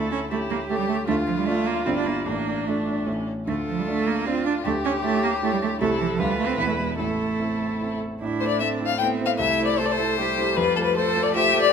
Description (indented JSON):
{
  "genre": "quick classical-period movement for piano quartet",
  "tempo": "154 BPM",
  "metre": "3/4",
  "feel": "rubato",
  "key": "D minor, A minor from 5.8 s",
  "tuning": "A4 = 440 Hz",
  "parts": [
    { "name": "clear violin", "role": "melody", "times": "0.0-11.7 s", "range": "C#4 to G5", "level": "-26 LUFS", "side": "left 9 dB", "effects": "none" },
    { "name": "clear cello", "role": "second line", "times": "0.0-11.7 s", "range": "E3 to A4", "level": "-26 LUFS", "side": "right 6 dB", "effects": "none" },
    { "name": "rich viola", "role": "accompaniment", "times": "0.0-11.7 s", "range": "F3 to B4", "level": "-31 LUFS", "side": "right 3 dB", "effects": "none" },
    { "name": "warm grand piano", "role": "accompaniment", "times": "0.0-11.7 s", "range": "E1 to F5", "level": "-28 LUFS", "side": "equal", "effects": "none" }
  ],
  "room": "moderate recital hall reverb, RT60 1.4 s",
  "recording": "close, detailed microphones",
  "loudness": "-21 LUFS",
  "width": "side -7 dB against mid",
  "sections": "0.0-8.2 A section; 8.2-11.7 B section",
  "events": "none",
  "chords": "0.0 A7/D; 1.1 Dm; 1.9 Gm; 2.3 Dm/A; 3.1 A; 3.5 Dm; 4.7 Dsus24; 5.8 Am/C; 6.2 Dm; 6.6 E; 7.0 Am; 9.4 Am/C; 10.6 F"
}